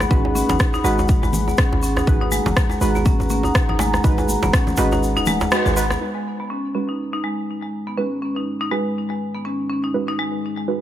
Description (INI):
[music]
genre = afro house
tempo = 122 BPM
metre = 4/4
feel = swing 58% on 16ths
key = G# minor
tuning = A4 = 440 Hz
[part]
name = dark analog pad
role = sustained chords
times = 0.0-10.8 s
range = G#3 to B5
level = -28 LUFS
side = left 1 dB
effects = chorus, sidechain pumping
[part]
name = marimba with medium hard mallets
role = arpeggios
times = 0.0-10.6 s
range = G#3 to D#4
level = -24 LUFS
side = left 1 dB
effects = sidechain pumping, low-pass filter, ping-pong delay
[part]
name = deep mellow chord stab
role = stabs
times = 0.0-10.8 s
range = G#3 to B4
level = -26 LUFS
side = right 3 dB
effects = chorus, sidechain pumping, ping-pong delay
[part]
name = warm 808-style bass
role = bass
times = 0.0-6.0 s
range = D#1 to G#1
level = -23 LUFS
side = equal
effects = sidechain pumping
[part]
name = electronic rim click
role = drums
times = 0.0-6.0 s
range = none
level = -24 LUFS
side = equal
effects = low-pass filter on snare, low-pass filter on room
[part]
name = djembe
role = percussion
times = 0.0-6.0 s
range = none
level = -28 LUFS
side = right 2 dB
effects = none
[part]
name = egg shaker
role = percussion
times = 0.0-6.0 s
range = none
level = -32 LUFS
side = left 2 dB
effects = none
[part]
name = electronic kick drum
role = drums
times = 0.1-4.6 s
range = none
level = -18 LUFS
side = equal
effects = none
[part]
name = congas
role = percussion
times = 0.4-5.4 s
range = none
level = -28 LUFS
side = left 3 dB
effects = none
[sound]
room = light reverb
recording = none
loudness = -18 LUFS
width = side -12 dB against mid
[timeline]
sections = 0.0-6.0 A section; 6.0-10.8 B section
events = kick drops out 5.0-6.0; band accent 5.5; filter sweep on marimba 6.0-10.8; filter sweep on analog synth pad 6.0-10.8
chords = 0.0 G#m7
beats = | 0.11 0.60 1.09 1.58 | 2.08 2.57 3.06 3.55 | 4.04 4.53 5.03 5.52 | 6.01 6.50 6.99 7.49 | 7.98 8.47 8.96 9.45 | 9.94 10.44